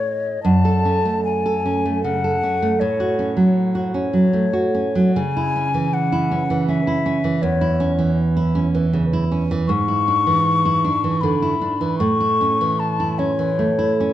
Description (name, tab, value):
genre	romantic duo for flute and classical guitar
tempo	78 BPM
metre	3/4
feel	uneven beats, rubato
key	F# minor, A major from 9.7 s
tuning	A4 = 440 Hz
part	mellow hollow silver concert flute	melody	0.0-14.1 s	C#5 to C#6	-21 LUFS	left 5 dB	tape echo
part	nylon-string guitar	accompaniment	0.0-14.1 s	E2 to A4	-18 LUFS	right 2 dB	none
room	moderate recital hall reverb, RT60 1.5 s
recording	dark, warm production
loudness	-17 LUFS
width	side -12 dB against mid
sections	0.4-14.1 A section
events	none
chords	0.4 F#m; 2.8 F#m/A; 5.2 C#m; 7.4 C#m/E; 9.7 E7/G#; 12.0 A